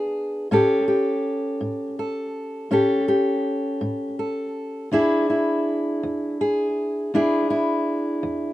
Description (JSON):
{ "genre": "blues", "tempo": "54 BPM (dotted quarters)", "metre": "12/8", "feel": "straight", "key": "unclear", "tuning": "A4 = 440 Hz", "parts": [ { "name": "fingerpicked steel-string acoustic guitar", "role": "solo", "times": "0.0-8.5 s", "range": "E2 to A4", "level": "-21 LUFS", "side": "equal", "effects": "slapback echo" } ], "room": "little or no reverb", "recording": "recorded outdoors, with no room sound", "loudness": "-20 LUFS", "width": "side -15 dB against mid", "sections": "0.0-8.5 A section", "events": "none", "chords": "0.0 E7 (rootless); 0.5 A7; 4.9 E7" }